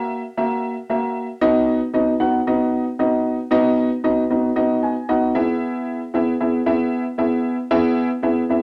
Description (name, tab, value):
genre	soul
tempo	114 BPM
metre	4/4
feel	straight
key	B major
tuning	A4 = 445 Hz
part	dark upright piano	solo	0.0-8.6 s	A#3 to G#5	-20 LUFS	equal	none
room	wet club reverb, RT60 0.5 s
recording	none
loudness	-20 LUFS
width	mono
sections	0.0-1.4 A section; 1.4-8.6 B section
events	upright piano fill 4.6-5.6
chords	0.0 F#7; 1.4 B; 5.4 E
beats	0.37 0.90 | 1.42 1.95 2.47 3.00 | 3.52 4.04 4.57 5.09 | 5.62 6.14 6.67 7.19 | 7.72 8.24